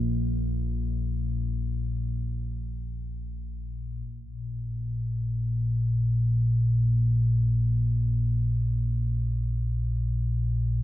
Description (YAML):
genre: ambient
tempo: free time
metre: none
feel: none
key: unclear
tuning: A4 = 441 Hz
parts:
  - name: deep rumbling drone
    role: solo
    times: 0.0-10.8 s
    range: Bb1 to Bb2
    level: -25 LUFS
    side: left 1 dB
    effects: built-in reverb, diffuse ambient delay
room: wet cathedral reverb, RT60 5.6 s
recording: dreamy mix soaked in reverb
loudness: -24 LUFS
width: side -14 dB against mid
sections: 0.0-4.1 A section; 4.1-10.8 B section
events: none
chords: none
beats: free time